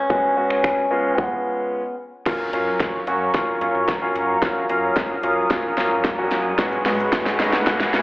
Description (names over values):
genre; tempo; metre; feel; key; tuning
dance-pop; 111 BPM; 4/4; straight; F# major; A4 = 438 Hz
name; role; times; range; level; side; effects
direct-recorded clean electric guitar; melody; 0.0-2.0 s; C#4; -21 LUFS; equal; phaser, tape echo
clear concert grand piano; accompaniment; 0.1-8.0 s; F#3 to F#4; -22 LUFS; equal; sidechain pumping
pop drum kit; drums; 0.1-8.0 s; crash cymbal, finger snaps, hi-hat, kick drum, shaker, snare drum; -23 LUFS; equal; none
sweeping resonant pad; sustained chords; 2.3-8.0 s; F#3 to D#6; -24 LUFS; equal; chorus, phaser, sidechain pumping
upright bass; bass; 2.3-8.0 s; F#1 to G#2; -36 LUFS; equal; sidechain pumping
riser; sound effects; 5.2-8.0 s; none; -31 LUFS; equal; none
tambourine; percussion; 6.6-8.0 s; none; barely audible; none; none
room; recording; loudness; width
moderate plate reverb, RT60 1.3 s, digital ambience; live gig heard through the venue's PA, club reverb, telephone sound; -18 LUFS; side -20 dB against mid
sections
0.0-2.3 A section; 2.3-8.0 B section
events
break 1.7-2.3; build-up 2.3-8.0; drum fill 2.3-8.0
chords
0.0 C#7sus4/G#; 2.3 F#maj7; 6.6 C#7sus4/G#